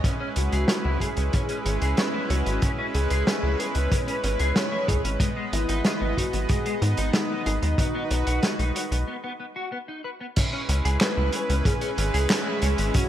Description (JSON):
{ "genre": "synthwave", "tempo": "93 BPM", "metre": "4/4", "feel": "straight", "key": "C# minor", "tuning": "A4 = 440 Hz", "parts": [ { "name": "soft supersaw", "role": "sustained chords", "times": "0.0-13.1 s", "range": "G#3 to D#5", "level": "-30 LUFS", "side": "right 1 dB", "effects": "sidechain pumping" }, { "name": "clean electric guitar", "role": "riff", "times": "0.0-13.0 s", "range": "G#3 to C#5", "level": "-33 LUFS", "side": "left 2 dB", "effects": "ensemble chorus, digital delay" }, { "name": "kick drum", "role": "drums", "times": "0.0-13.1 s", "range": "none", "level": "-24 LUFS", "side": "equal", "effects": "none" }, { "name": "vintage drum kit", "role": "drums", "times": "0.0-13.1 s", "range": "crash cymbal, handclaps, hi-hat, snare drum", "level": "-27 LUFS", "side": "equal", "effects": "gated reverb" }, { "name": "wide unison lead", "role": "melody", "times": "0.4-13.1 s", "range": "D#4 to C#5", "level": "-30 LUFS", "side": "left 1 dB", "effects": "cassette tape, digital delay" }, { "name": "tight sequencer bass", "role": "bass", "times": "0.4-12.9 s", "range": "G#1 to G#2", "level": "-24 LUFS", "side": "equal", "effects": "none" } ], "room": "light reverb, studio reverb", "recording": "bright 1980s-style digital production", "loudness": "-22 LUFS", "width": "side -11 dB against mid", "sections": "0.0-10.4 A section; 10.4-13.1 B section", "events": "break 9.1-10.4", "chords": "0.0 C#m7; 5.2 G#m; 7.8 B6; 10.4 C#m7", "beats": "| 0.04 0.69 1.33 1.98 | 2.62 3.27 3.91 4.56 | 5.20 5.85 6.49 7.14 | 7.78 8.43 9.07 9.72 | 10.37 11.01 11.65 12.30 | 12.95" }